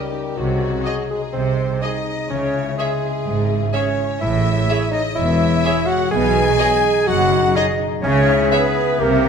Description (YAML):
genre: cinematic, playful, whimsical film cue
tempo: 125 BPM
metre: 4/4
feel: straight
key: C# minor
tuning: A4 = 440 Hz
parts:
  - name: mellow clarinet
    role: second line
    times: 0.0-9.3 s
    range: F#4 to G#5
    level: -26 LUFS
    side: left 3 dB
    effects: none
  - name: rich studio violin section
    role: second line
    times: 0.0-9.3 s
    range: F#4 to G#5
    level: -28 LUFS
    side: left 3 dB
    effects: none
  - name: warm cor anglais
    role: second line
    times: 0.0-9.3 s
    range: G4 to G#4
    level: -31 LUFS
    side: equal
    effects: none
  - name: warm bassoon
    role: accompaniment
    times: 0.0-9.3 s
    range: F#3 to G#4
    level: -21 LUFS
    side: right 2 dB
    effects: none
  - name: warm French horn section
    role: sustained chords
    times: 0.0-9.3 s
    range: G4 to E5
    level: -28 LUFS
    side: left 5 dB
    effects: none
  - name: concert harp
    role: arpeggios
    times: 0.0-9.3 s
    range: A2 to A#4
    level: -27 LUFS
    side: left 9 dB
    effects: none
  - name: rich symphonic double bass section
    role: bass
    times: 0.4-9.3 s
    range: E1 to C#2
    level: -24 LUFS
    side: right 3 dB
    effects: none
  - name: warm studio cello section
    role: bass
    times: 0.4-9.3 s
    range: E2 to C#3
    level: -23 LUFS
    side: right 2 dB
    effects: none
  - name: rich studio viola section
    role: accompaniment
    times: 0.8-8.6 s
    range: G#4 to D#5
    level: -30 LUFS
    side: right 2 dB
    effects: none
  - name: rich studio violin section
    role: melody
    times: 0.9-8.6 s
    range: D#5 to E5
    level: -30 LUFS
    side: left 3 dB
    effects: none
  - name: large flute ensemble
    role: second line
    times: 0.9-9.3 s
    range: C#5 to E5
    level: -30 LUFS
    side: left 1 dB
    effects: none
room: wet recital hall reverb, RT60 1.5 s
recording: none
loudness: -16 LUFS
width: side -6 dB against mid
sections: 0.0-9.3 A section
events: none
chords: 0.4 G#7/B#; 2.3 C#m; 4.2 Amaj7; 6.1 B6; 8.0 C#m